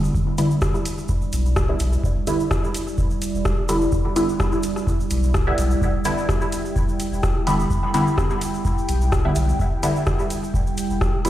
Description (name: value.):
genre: dub techno.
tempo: 127 BPM.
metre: 4/4.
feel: swing 54% on 16ths.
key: E minor.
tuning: A4 = 441 Hz.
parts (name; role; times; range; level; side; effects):
deep dark ambient pad; sustained chords; 0.0-11.3 s; G3 to G5; -28 LUFS; right 1 dB; chorus, built-in reverb, sidechain pumping.
filtered dub chord stab; stabs; 0.0-11.3 s; D3 to E4; -24 LUFS; equal; phaser, sidechain pumping, dub echo.
pure sine sub bass; bass; 0.0-11.3 s; E1 to B1; -23 LUFS; equal; sidechain pumping.
tube shaker; percussion; 0.0-11.3 s; none; -37 LUFS; right 2 dB; none.
electronic kick drum; drums; 0.1-11.1 s; none; -24 LUFS; equal; none.
deep house drum kit; drums; 0.4-11.3 s; hi-hat, rim click; -28 LUFS; equal; overdrive, dub echo.
room: light reverb, digital ambience.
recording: played on a big sound system in a bare room, stone room reverb.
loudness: -19 LUFS.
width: side -13 dB against mid.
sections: 0.0-11.3 A section.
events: none.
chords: 0.0 Em7.